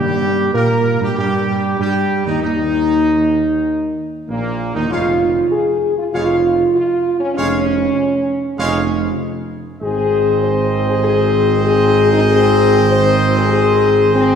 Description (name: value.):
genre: classical, ceremonial fanfare.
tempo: 97 BPM.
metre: 4/4.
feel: straight.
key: Eb mixolydian.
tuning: A4 = 440 Hz.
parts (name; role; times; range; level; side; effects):
bright trumpet section; melody; 0.0-14.4 s; Bb3 to F5; -23 LUFS; right 1 dB; none.
clear trombone section; sustained chords; 0.0-14.4 s; Bb2 to C4; -24 LUFS; right 2 dB; none.
dark French horn section; sustained chords; 0.0-14.4 s; Bb3 to C5; -16 LUFS; left 2 dB; none.
dark tuba; bass; 0.0-14.4 s; F1 to Bb2; -19 LUFS; right 3 dB; none.
timpani; percussion; 0.0-0.8 s; Eb3; -25 LUFS; equal; none.
room: wet concert hall reverb, RT60 2.3 s.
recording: heard from further back in the room.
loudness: -13 LUFS.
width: side -7 dB against mid.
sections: 0.0-14.4 A section.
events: none.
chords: 0.0 Eb; 4.9 Db/F; 9.8 Ab.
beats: 0.54 1.17 1.79 | 2.42 3.04 3.66 4.28 | 4.90 5.52 6.13 6.75 | 7.36 7.97 8.58 9.19 | 9.81 10.42 11.03 11.65 | 12.29 12.91 13.53 14.15.